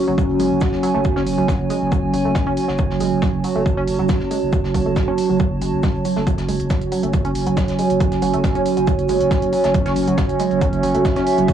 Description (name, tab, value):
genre	driving peak-time techno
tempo	138 BPM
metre	4/4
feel	straight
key	F# minor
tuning	A4 = 440 Hz
part	analog drone	drone	0.0-11.5 s	F#3 to C#4	-22 LUFS	equal	chorus, sidechain pumping
part	warbly tape-like pad	texture	0.0-11.5 s	F#4 to A5	-23 LUFS	right 5 dB	chorus, built-in reverb, sidechain pumping
part	tight sequenced synth	riff	0.1-11.5 s	F#3 to C#4	-25 LUFS	right 2 dB	chorus, sidechain pumping, tape echo
part	saturated sub bass	bass	0.1-11.5 s	F#1	-27 LUFS	right 1 dB	overdrive, sidechain pumping, low-pass filter
part	electronic kick drum	drums	0.2-11.5 s	none	-21 LUFS	equal	cassette tape
part	jazz brush drum kit	drums	0.2-11.5 s	hi-hat, shaker, snare drum	-35 LUFS	left 1 dB	high-pass filter on hats, cassette tape, high-pass filter on snare, high-pass filter on perc, high-pass filter on room
part	electronic hi-hat	drums	0.4-11.5 s	none	-36 LUFS	right 2 dB	cassette tape
room	moderate booth ambience, RT60 0.3 s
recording	home recording on cassette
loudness	-16 LUFS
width	side -9 dB against mid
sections	0.0-11.5 A section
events	none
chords	0.0 F#m